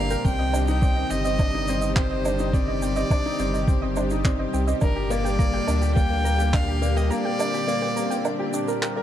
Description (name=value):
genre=piano and strings electronica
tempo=105 BPM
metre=4/4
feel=straight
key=C minor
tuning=A4 = 440 Hz
part: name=warm violin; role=melody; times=0.0-8.8 s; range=Bb4 to G5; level=-29 LUFS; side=equal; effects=ping-pong delay, shimmer reverb
part: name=lush unison pad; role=sustained chords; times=0.0-9.0 s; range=Bb2 to Eb5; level=-30 LUFS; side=right 1 dB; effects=chorus, sidechain pumping, shimmer reverb
part: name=soft round pluck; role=arpeggios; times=0.0-9.0 s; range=Bb4 to Bb5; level=-33 LUFS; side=right 5 dB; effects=chorus, sidechain pumping, ping-pong delay, shimmer reverb
part: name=clear grand piano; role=riff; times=0.0-9.0 s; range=Bb3 to Bb4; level=-28 LUFS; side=left 3 dB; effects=ping-pong delay, shimmer reverb
part: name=warm sub bass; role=bass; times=0.0-7.1 s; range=G1 to D2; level=-26 LUFS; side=equal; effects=sidechain pumping
part: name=shaker, woodblock and handclaps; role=drums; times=0.1-8.9 s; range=none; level=-32 LUFS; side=right 4 dB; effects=none
part: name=electronic kick drum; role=drums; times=0.2-6.7 s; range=none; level=-22 LUFS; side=equal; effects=none
room=light reverb, small room ambience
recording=dark, warm production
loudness=-21 LUFS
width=side -11 dB against mid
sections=0.0-9.0 A section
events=break 7.1-9.0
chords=0.3 Cmadd9; 4.8 Gm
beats=| 0.25 0.82 1.39 1.97 | 2.54 3.11 3.68 4.25 | 4.82 5.39 5.97 6.54 | 7.11 7.68 8.25 8.82